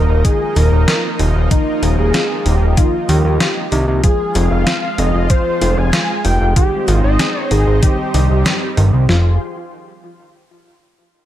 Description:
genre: synthwave.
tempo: 95 BPM.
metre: 4/4.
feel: straight.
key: F minor.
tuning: A4 = 437 Hz.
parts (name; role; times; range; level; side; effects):
wide unison lead; melody; 0.0-9.4 s; Eb4 to Ab5; -20 LUFS; equal; vintage 12-bit sampler grit, tape echo.
analog string pad; sustained chords; 0.0-9.4 s; F3 to C5; -22 LUFS; equal; ensemble chorus, sidechain pumping.
analog pluck; arpeggios; 0.0-9.4 s; Eb3 to Ab4; -24 LUFS; left 1 dB; chorus, tape echo.
fat analog bass; bass; 0.0-9.4 s; Eb1 to Eb2; -13 LUFS; equal; none.
detuned 8-bit digital drum machine; drums; 0.2-9.2 s; kick drum, snare drum; -14 LUFS; equal; none.
detuned 8-bit digital drum machine; drums; 0.2-8.9 s; hi-hat, snare drum; -19 LUFS; equal; gated reverb.
room: little or no reverb.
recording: none.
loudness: -12 LUFS.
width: side -12 dB against mid.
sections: 0.0-9.1 A section; 9.1-11.3 B section.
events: none.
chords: 0.0 Ebsus2; 4.0 Fm; 6.6 Ab; 7.8 Cm; 9.1 Fmadd9.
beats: 0.25 0.88 | 1.51 2.14 2.77 3.41 | 4.04 4.67 5.30 5.93 | 6.56 7.20 7.83 8.46 | 9.09.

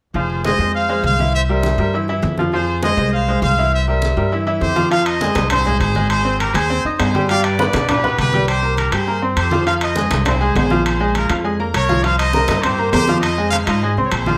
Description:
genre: latin, salsa.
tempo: 202 BPM.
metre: 4/4.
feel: straight.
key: F minor.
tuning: A4 = 436 Hz.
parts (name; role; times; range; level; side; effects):
upright bass; bass; 0.1-14.4 s; F1 to B2; -23 LUFS; equal; none.
bright trumpet section; melody; 0.2-14.4 s; F4 to F5; -22 LUFS; equal; slapback echo.
bright upright piano; accompaniment; 0.2-14.4 s; E3 to Ab6; -22 LUFS; equal; none.
congas; percussion; 0.2-14.4 s; none; -27 LUFS; equal; none.
timbales; percussion; 4.9-14.3 s; none; -26 LUFS; equal; none.
room: moderate studio reverb, RT60 0.6 s.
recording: none.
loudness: -17 LUFS.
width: mono.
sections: 0.1-4.9 A section; 4.9-14.4 B section.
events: none.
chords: 0.1 Fm7; 1.3 C7; 2.5 Fm7; 3.7 C7; 4.9 Fm7; 6.1 Abmaj7; 7.3 G; 8.5 C5; 9.7 Bb7(no3); 12.0 C7sus4; 13.2 Bb9sus4.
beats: | 0.15 0.45 0.75 1.04 | 1.34 1.64 1.94 2.24 | 2.53 2.83 3.13 3.43 | 3.73 4.02 4.32 4.62 | 4.92 5.21 5.51 5.81 | 6.10 6.40 6.70 6.99 | 7.29 7.59 7.88 8.18 | 8.48 8.78 9.07 9.37 | 9.67 9.96 10.26 10.56 | 10.85 11.15 11.45 11.74 | 12.04 12.34 12.63 12.93 | 13.23 13.52 13.82 14.12.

